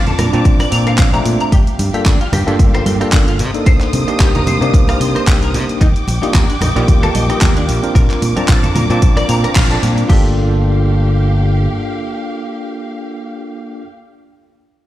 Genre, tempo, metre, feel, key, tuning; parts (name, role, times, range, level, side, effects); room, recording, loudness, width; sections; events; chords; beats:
nu-disco, nu disco; 112 BPM; 4/4; swing 55% on 16ths; G minor; A4 = 440 Hz
tine electric piano; accompaniment; 0.0-13.8 s; A3 to A5; -20 LUFS; equal; medium stereo tremolo, digital delay
dark symphonic violin section; sustained chords; 0.0-13.8 s; Bb3 to Eb6; -25 LUFS; equal; sidechain pumping
twelve-string electric guitar; riff; 0.0-10.3 s; Bb3 to C6; -23 LUFS; left 2 dB; ensemble chorus, digital delay
pop drum kit; drums; 0.1-10.2 s; crash cymbal, handclaps, hi-hat, rim click; -22 LUFS; equal
congas; percussion; 0.1-10.0 s; -23 LUFS; right 2 dB
modern bright fingered electric bass; bass; 0.2-11.7 s; G1 to C3; -16 LUFS; equal
electronic kick drum; drums; 0.5-10.2 s; -12 LUFS; equal
light reverb; played on a big sound system in a bare room, stone room reverb; -11 LUFS; side -14 dB against mid
0.0-10.1 A section; 10.1-14.4 B section
drop 0.0-10.1; band accent 9.6
0.0 Bbmaj7; 1.5 Gm7; 3.4 Cm7; 5.8 Ebmaj7; 8.0 Bbmaj7; 10.1 Gm7
0.45 0.99 | 1.52 2.06 2.60 3.13 | 3.67 4.20 4.74 5.28 | 5.81 6.35 6.88 7.42 | 7.95 8.49 9.03 9.56 | 10.10 10.63 11.17 11.70 | 12.24 12.78 13.31